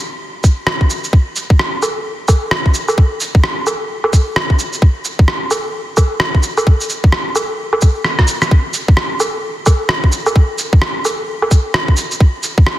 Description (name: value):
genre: future garage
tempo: 130 BPM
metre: 4/4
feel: swing 61% on 16ths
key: none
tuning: none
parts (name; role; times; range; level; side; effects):
- electronic kick drum; drums; 0.4-12.6 s; none; -9 LUFS; equal; none
- electronic shaker, rim click and woodblock; drums; 0.4-12.8 s; none; -17 LUFS; equal; soft clipping on snare
room: little or no reverb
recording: dense, heavily limited modern master, vinyl crackle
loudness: -12 LUFS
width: side -14 dB against mid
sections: 0.0-12.8 A section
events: drum fill 8.1-8.5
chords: none